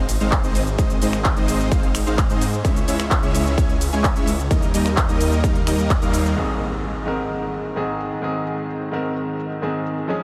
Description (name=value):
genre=EDM, festival progressive house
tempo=129 BPM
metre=4/4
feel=straight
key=Ab major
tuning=A4 = 441 Hz
part: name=detuned saw bass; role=bass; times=0.0-6.3 s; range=Ab1 to Ab2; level=-26 LUFS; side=equal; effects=chorus, sidechain pumping
part: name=big-room dance drum kit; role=drums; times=0.1-10.2 s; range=crash cymbal, finger snaps, handclaps, hi-hat, ride cymbal, shaker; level=-30 LUFS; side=equal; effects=overdrive, low-pass filter on hats, low-pass filter on perc, low-pass filter on cymbals, low-pass filter on snare
part: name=dense compressed supersaw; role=riff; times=0.2-6.3 s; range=G3 to Ab5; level=-26 LUFS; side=equal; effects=sidechain pumping, analog delay
part: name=electronic kick drum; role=drums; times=0.3-6.0 s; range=none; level=-23 LUFS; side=equal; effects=overdrive
part: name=bright concert grand piano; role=accompaniment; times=6.4-10.2 s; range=Ab2 to Bb4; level=-26 LUFS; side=equal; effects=sidechain pumping, analog delay
part: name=impact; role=sound effects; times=6.4-8.2 s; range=none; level=-35 LUFS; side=equal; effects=none
room=moderate huge ambient reverb, RT60 6.9 s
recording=dreamy mix soaked in reverb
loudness=-21 LUFS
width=mono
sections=0.0-6.4 A section; 6.4-10.2 B section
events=drop 0.0-6.4; band accent 5.9; impact 6.4-8.2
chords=0.0 Ab; 2.6 Dbm; 4.5 Eb; 6.4 Ab